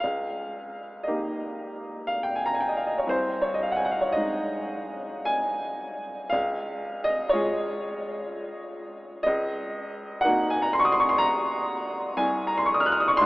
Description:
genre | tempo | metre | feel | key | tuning
classical, romantic nocturne for solo piano | 50-62 BPM | 3/4 | rubato | unclear | A4 = 440 Hz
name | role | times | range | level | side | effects
warm upright piano | solo | 0.0-13.3 s | C2 to Gb6 | -24 LUFS | equal | none
room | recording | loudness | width
wet huge ambient reverb, RT60 7.6 s | in a vast, echoing space, AM radio sound | -24 LUFS | side -21 dB against mid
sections
0.0-13.3 A section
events
none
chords
0.0 Eb7/Db; 3.1 Ab/C; 6.3 Db; 9.3 Ebm7/Db; 12.2 Ab7/C

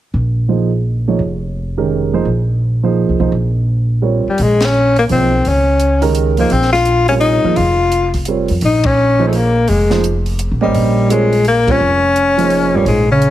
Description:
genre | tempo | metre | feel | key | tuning
modal jazz | 170 BPM | 3/4 | swing 64% on 8ths | Bb dorian | A4 = 441 Hz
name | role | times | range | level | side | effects
upright bass | bass | 0.1-13.3 s | F1 to F2 | -16 LUFS | equal | none
dark grand piano | accompaniment | 0.5-12.9 s | C3 to Eb5 | -17 LUFS | right 5 dB | none
breathy tenor saxophone | melody | 4.3-13.3 s | G3 to F4 | -13 LUFS | left 3 dB | none
compact cocktail drum kit | drums | 4.4-13.3 s | hi-hat, kick drum, ride cymbal, snare drum | -26 LUFS | equal | none
dark bass clarinet | second line | 12.7-13.3 s | G2 to Db3 | -16 LUFS | right 1 dB | none
room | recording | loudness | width
moderate large studio reverb, RT60 1.3 s | heavily compressed radio sound | -12 LUFS | side -13 dB against mid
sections
0.1-4.4 A section; 4.4-13.3 B section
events
band accent 4.6, 8.8, 11.6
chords
0.1 Bbm11

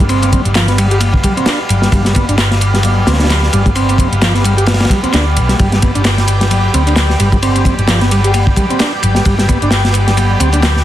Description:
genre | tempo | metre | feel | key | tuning
breakbeat, breaks | 131 BPM | 4/4 | swing 56% on 16ths | unclear | A4 = 439 Hz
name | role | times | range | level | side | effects
lush unison pad | sustained chords | 0.0-10.8 s | G3 to G5 | -19 LUFS | right 1 dB | chorus, sidechain pumping
combo organ | riff | 0.0-10.6 s | F3 to G4 | -18 LUFS | right 1 dB | overdrive, digital delay
hollow-body short-scale picked electric bass | bass | 0.0-10.8 s | G1 to D2 | -13 LUFS | equal | tube saturation
crunchy breakbeat drum kit | drums | 0.0-10.8 s | kick drum, ride cymbal, snare drum | -15 LUFS | equal | none
garage drum kit | drums | 0.0-10.7 s | handclaps, hi-hat | -20 LUFS | equal | none
congas | percussion | 0.0-10.7 s | none | -25 LUFS | left 4 dB | none
room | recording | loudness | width
light reverb | dense, heavily limited modern master | -10 LUFS | side -12 dB against mid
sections
0.0-10.8 A section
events
none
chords
0.0 G7

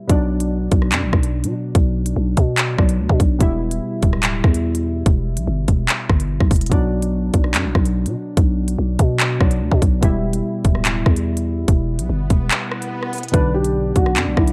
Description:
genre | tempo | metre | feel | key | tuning
hip hop, drill | 145 BPM | 4/4 | half-time | B minor | A4 = 440 Hz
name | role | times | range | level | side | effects
glassy digital keys | accompaniment | 0.0-14.5 s | B2 to E4 | -27 LUFS | equal | chorus
growling 808-style bass | bass | 0.1-14.5 s | D1 to B2 | -22 LUFS | equal | none
drill drum kit | drums | 0.1-14.5 s | handclaps, hi-hat, kick drum, rim click | -19 LUFS | equal | none
swell | sound effects | 12.0-13.3 s | none | -33 LUFS | equal | none
dark concert grand piano | melody | 13.3-14.5 s | E4 to B4 | -23 LUFS | equal | none
deep dark ambient pad | sustained chords | 13.9-14.5 s | B3 to F#5 | -32 LUFS | equal | chorus, built-in reverb
room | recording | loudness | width
little or no reverb | dark, warm production | -18 LUFS | mono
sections
0.0-13.3 A section; 13.3-14.5 B section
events
swell 12.0-13.3; break 12.5-13.3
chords
0.1 Bm; 3.4 Em; 6.7 Bm; 10.0 Em; 13.3 Bm

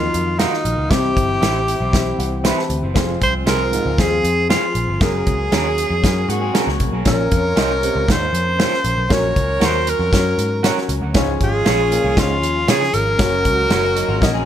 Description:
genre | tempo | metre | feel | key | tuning
uptempo 1960s-style soul | 117 BPM | 4/4 | straight | unclear | A4 = 439 Hz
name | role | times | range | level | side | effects
warm tenor saxophone | melody | 0.0-14.5 s | Eb4 to Db5 | -20 LUFS | equal | none
clear saxophone section | second line | 0.0-14.5 s | Eb3 to Db5 | -28 LUFS | right 1 dB | none
clear upright piano | accompaniment | 0.0-14.5 s | Bb2 to A5 | -25 LUFS | left 4 dB | none
percussive tonewheel organ | sustained chords | 0.0-14.5 s | Eb3 to F5 | -30 LUFS | left 3 dB | none
breathy baritone saxophone | riff | 0.0-13.4 s | F2 to C3 | -29 LUFS | right 5 dB | none
vintage muted picked electric bass | bass | 0.0-14.4 s | F1 to Db3 | -22 LUFS | equal | none
natural country drum kit | drums | 0.1-14.3 s | hi-hat, kick drum, snare drum | -19 LUFS | equal | none
electric guitar through a small old amp | stabs | 0.4-13.8 s | Db4 to F5 | -28 LUFS | right 6 dB | tape echo
electric guitar through a small old amp | riff | 6.3-7.0, 14.0-14.5 s | Gb3 to Ab4 | -26 LUFS | left 6 dB | none
room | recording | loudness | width
light reverb | faint mains hum | -15 LUFS | side -10 dB against mid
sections
0.0-14.5 A section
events
upright piano fill 1.9-3.0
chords
0.0 Ebmadd9; 0.9 C; 3.0 Fm; 5.0 Gbadd9; 7.1 Bbmadd9; 9.1 Gb/Bb; 11.1 Db; 13.2 Gb

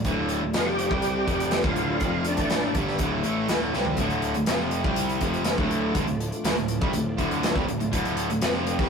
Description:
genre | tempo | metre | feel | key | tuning
classic rock | 122 BPM | 4/4 | straight | D minor | A4 = 439 Hz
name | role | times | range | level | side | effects
cranked stack guitar | riff | 0.0-8.9 s | D2 to C4 | -28 LUFS | right 4 dB | overdrive
crunchy overdriven guitar | riff | 0.0-8.9 s | D2 to C4 | -31 LUFS | left 7 dB | none
fuzz picked electric bass | bass | 0.0-8.9 s | D1 to C2 | -32 LUFS | equal | overdrive
big rock drum kit | drums | 0.0-8.9 s | hi-hat, kick drum, snare drum, toms | -27 LUFS | equal | none
string machine, full ensemble | sustained chords | 0.1-8.9 s | A3 to F5 | -36 LUFS | left 1 dB | none
overdriven tonewheel organ | melody | 0.6-2.8 s | D4 to G4 | -28 LUFS | equal | slow rotary speaker, chorus vibrato
cranked stack guitar | riff | 4.0-8.9 s | D2 to C4 | -33 LUFS | equal | overdrive
room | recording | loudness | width
moderate studio reverb, RT60 0.6 s | rough rehearsal-room recording, warm saturation | -22 LUFS | side -6 dB against mid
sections
0.0-4.0 A section; 4.0-8.9 B section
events
tonewheel organ solo 0.0-4.0; drum fill 3.7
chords
0.0 Dm

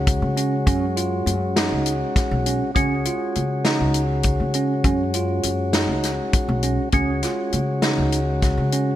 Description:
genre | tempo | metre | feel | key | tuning
progressive instrumental, band music in an uneven meter | 201 BPM (eighths) | 7/8 | straight | Db major | A4 = 439 Hz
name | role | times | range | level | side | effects
percussive tonewheel organ | accompaniment | 0.0-9.0 s | Ab3 to Gb4 | -25 LUFS | left 2 dB | stopped rotary speaker
upright bass | bass | 0.0-9.0 s | Cb2 to Db3 | -24 LUFS | left 1 dB | none
warm soul drum kit | drums | 0.1-8.9 s | hi-hat, kick drum, snare drum | -23 LUFS | left 1 dB | gated reverb
tine electric piano | arpeggios | 0.4-8.9 s | Db4 to F4 | -26 LUFS | right 6 dB | none
room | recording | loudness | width
light reverb, studio ambience | bright 1980s-style digital production | -19 LUFS | side -12 dB against mid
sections
0.0-2.8 A section; 2.8-9.0 B section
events
none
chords
0.0 Dbsus4

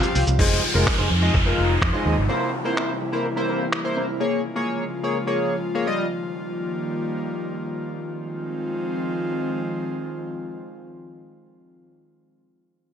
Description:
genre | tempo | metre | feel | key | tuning
dance-pop | 126 BPM | 4/4 | straight | F minor | A4 = 441 Hz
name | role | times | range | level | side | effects
chorused polysynth | accompaniment | 0.0-6.1 s | G3 to F5 | -25 LUFS | left 2 dB | sidechain pumping
airy breathy pad | sustained chords | 0.0-11.8 s | C3 to G4 | -28 LUFS | left 1 dB | chorus, sidechain pumping
electric guitar at the edge of break-up | riff | 0.0-4.2 s | C4 to C5 | -29 LUFS | right 3 dB | analog chorus
trip hop sampler-style drum kit | drums | 0.0-3.8 s | crash cymbal, finger snaps, hi-hat, kick drum, shaker | -23 LUFS | equal | none
vintage muted fingered electric bass | bass | 0.2-2.3 s | F1 to F2 | -21 LUFS | equal | sidechain pumping
downlifter | sound effects | 0.4-4.2 s | none | -28 LUFS | equal | none
room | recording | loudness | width
light reverb | none | -21 LUFS | side -8 dB against mid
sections
0.4-8.0 A section; 8.0-11.8 B section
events
none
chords
0.4 Fm7; 2.3 C7; 4.2 Bbm7; 5.9 Ebadd9; 8.0 Fm7

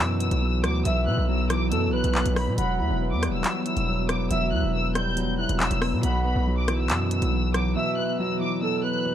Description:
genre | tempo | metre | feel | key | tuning
hip hop, drill | 139 BPM | 4/4 | half-time | E minor | A4 = 440 Hz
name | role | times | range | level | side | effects
warm studio violin section | melody | 0.0-9.1 s | B5 to G6 | -31 LUFS | left 2 dB | low-pass filter, tape echo
dark baby grand piano | accompaniment | 0.0-9.1 s | B2 to E4 | -28 LUFS | equal | low-pass filter
ethereal airy pad | sustained chords | 0.0-9.1 s | E3 to F#4 | -32 LUFS | left 1 dB | ensemble chorus, built-in reverb
distorted 808-style bass | bass | 0.0-7.8 s | E1 to B2 | -25 LUFS | equal | distortion
drill drum kit | drums | 0.2-7.6 s | handclaps, hi-hat, rim click | -28 LUFS | equal | none
breathy flute-like synth lead | second line | 0.9-9.1 s | A4 to F#5 | -31 LUFS | right 4 dB | chorus, tape echo
room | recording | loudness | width
digital ambience | dark, warm production | -22 LUFS | side -10 dB against mid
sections
0.0-9.1 A section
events
drums muted 7.8-9.1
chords
0.0 Bsus4; 2.6 Emadd9; 6.0 Bsus4

